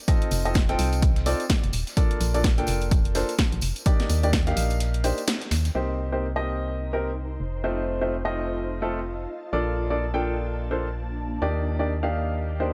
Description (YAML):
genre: piano house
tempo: 127 BPM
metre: 4/4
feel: swing 59% on 16ths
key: unclear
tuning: A4 = 439 Hz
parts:
  - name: clear upright piano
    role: riff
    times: 0.1-12.7 s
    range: A3 to G5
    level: -30 LUFS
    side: equal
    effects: sidechain pumping, tape echo
  - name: dusty soul sampler-style drum kit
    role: drums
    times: 0.1-5.7 s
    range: hi-hat, snare drum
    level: -42 LUFS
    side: equal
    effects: none
  - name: electronic kick drum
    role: drums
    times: 0.1-4.4 s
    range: none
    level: -24 LUFS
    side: equal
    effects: none
  - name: house drum kit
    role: drums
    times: 0.1-5.7 s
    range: hi-hat, snare drum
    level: -32 LUFS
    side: equal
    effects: none
  - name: tambourine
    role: percussion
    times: 0.1-5.7 s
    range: none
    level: -41 LUFS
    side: equal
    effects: none
  - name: organ-like FM bass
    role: bass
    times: 0.3-12.7 s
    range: Eb1 to Eb2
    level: -29 LUFS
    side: equal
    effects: sidechain pumping
  - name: ethereal airy pad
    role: texture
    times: 6.7-12.7 s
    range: Bb3 to D6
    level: -38 LUFS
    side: equal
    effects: ensemble chorus, built-in reverb, phaser, sidechain pumping
room: light reverb, digital ambience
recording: none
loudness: -25 LUFS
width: mono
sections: 0.0-5.7 A section; 5.7-12.7 B section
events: break 4.8-5.7; band accent 5.3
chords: 0.0 F7; 2.0 Bbmaj7; 3.9 Ebmaj7; 5.7 Cm7; 7.4 F7; 9.5 Bbmaj7; 11.4 Ebmaj7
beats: | 0.08 0.55 1.02 1.50 | 1.97 2.44 2.91 3.39 | 3.86 4.33 4.80 5.28 | 5.75 6.22 6.69 7.17 | 7.64 8.11 8.58 9.06 | 9.53 10.00 10.47 10.95 | 11.42 11.89 12.36